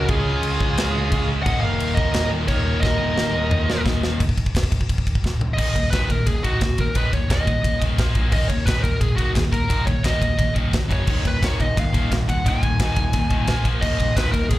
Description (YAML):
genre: heavy metal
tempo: 174 BPM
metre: 4/4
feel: straight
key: Eb minor from 5.6 s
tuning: A4 = 441 Hz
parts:
  - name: high-gain lead guitar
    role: melody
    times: 0.0-14.6 s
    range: Gb4 to Ab5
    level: -26 LUFS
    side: equal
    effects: distortion, slapback echo
  - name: high-gain lead guitar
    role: second line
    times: 0.0-3.8 s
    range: F4 to Eb5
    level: -29 LUFS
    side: right 3 dB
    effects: distortion, slapback echo
  - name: crunchy overdriven guitar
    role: riff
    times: 0.0-4.2, 11.1-14.6 s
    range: Eb2 to Db4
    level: -30 LUFS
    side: left 1 dB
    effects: slapback echo
  - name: high-gain distorted guitar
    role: riff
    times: 0.0-14.6 s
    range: Eb2 to Db4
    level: -29 LUFS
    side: left 7 dB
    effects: distortion, slapback echo
  - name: high-gain distorted guitar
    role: riff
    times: 0.0-14.6 s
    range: Eb2 to Db4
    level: -29 LUFS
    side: right 6 dB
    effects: distortion, slapback echo
  - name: overdriven picked electric bass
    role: bass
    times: 0.0-14.6 s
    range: Eb1 to Eb2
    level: -24 LUFS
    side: equal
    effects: none
  - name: tight metal drum kit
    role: drums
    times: 0.1-14.6 s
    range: crash cymbal, kick drum, ride cymbal, snare drum, toms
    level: -22 LUFS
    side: equal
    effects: none
room: little or no reverb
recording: live gig heard through the venue's PA, club reverb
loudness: -18 LUFS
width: side -16 dB against mid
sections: 0.0-4.2 A section; 4.2-5.6 B section; 5.6-14.6 C section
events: half time 0.0-4.2; drum fill 2.8-4.2, 5.2-5.6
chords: 0.0 Db; 1.5 Eb5; 4.2 N.C.; 5.6 Eb5; 8.0 Bb5; 8.3 Eb5; 10.9 Gb5; 11.1 Eb5; 13.5 Bb5; 13.8 Eb5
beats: | 0.08 0.42 0.77 1.11 | 1.46 1.80 2.14 2.48 | 2.83 3.17 3.51 3.86 | 4.20 4.54 4.88 5.23 | 5.57 5.92 6.26 6.60 | 6.95 7.29 7.63 7.98 | 8.32 8.67 9.01 9.36 | 9.70 10.04 10.39 10.73 | 11.07 11.42 11.76 12.11 | 12.45 12.79 13.14 13.48 | 13.83 14.17 14.52